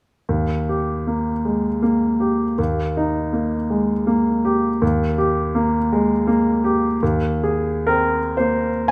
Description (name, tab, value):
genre	classical, romantic nocturne for solo piano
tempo	54 BPM (dotted quarters)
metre	6/8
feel	uneven beats, rubato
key	Eb major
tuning	A4 = 438 Hz
part	warm baby grand piano	solo	0.3-8.9 s	Eb2 to Ab5	-20 LUFS	equal	none
room	wet recital hall reverb, RT60 1.4 s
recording	none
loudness	-20 LUFS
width	mono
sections	0.3-8.9 A section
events	none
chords	0.3 Eb; 7.0 Ab/Eb